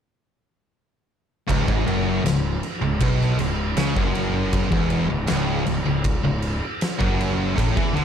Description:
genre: stoner and doom metal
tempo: 79 BPM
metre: 4/4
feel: straight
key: C# phrygian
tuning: A4 = 443 Hz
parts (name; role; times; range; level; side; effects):
- thick fuzz guitar; riff; 1.5-8.0 s; C#2 to E3; -26 LUFS; left 8 dB; distortion
- thick fuzz guitar; riff; 1.5-8.0 s; C#2 to E3; -26 LUFS; right 7 dB; distortion
- tight distorted guitar; riff; 1.5-8.0 s; C#2 to E3; -26 LUFS; equal; distortion
- fuzz fingered electric bass; bass; 1.5-8.0 s; C#1 to E2; -27 LUFS; equal; overdrive
- oversized low-tuned drum kit; drums; 1.5-8.0 s; crash cymbal, kick drum, snare drum; -25 LUFS; equal; none
room: light reverb, small room ambience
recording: dark, warm production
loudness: -20 LUFS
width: side -8 dB against mid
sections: 1.5-8.0 A section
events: none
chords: 1.5 C#m

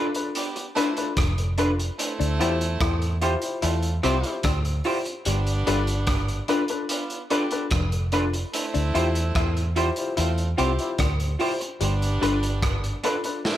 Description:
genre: lovers rock reggae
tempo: 73 BPM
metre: 4/4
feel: straight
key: unclear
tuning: A4 = 440 Hz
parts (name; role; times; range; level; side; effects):
- warm baby grand piano; accompaniment; 0.0-13.4 s; D4 to C5; -28 LUFS; left 4 dB; none
- electric guitar through a small old amp; stabs; 0.0-13.2 s; D4 to C5; -29 LUFS; right 2 dB; analog chorus, tape echo
- crunchy breakbeat drum kit; drums; 0.1-13.6 s; hi-hat, kick drum, rim click, snare drum; -29 LUFS; equal; gated reverb, tape echo
- edgy saxophone section; second line; 0.3-13.6 s; G3 to G4; -32 LUFS; right 3 dB; none
- electric guitar through a small old amp; riff; 1.2-12.5 s; F3 to E4; -31 LUFS; left 7 dB; none
- vintage muted fingered electric bass; bass; 1.2-12.9 s; F1 to E2; -25 LUFS; equal; none
room: light reverb, small room ambience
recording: none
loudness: -22 LUFS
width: side -12 dB against mid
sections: 0.0-13.6 A section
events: none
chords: 0.0 G7 (rootless); 2.0 Dm11; 5.3 G7; 8.5 Dm11; 11.8 G7

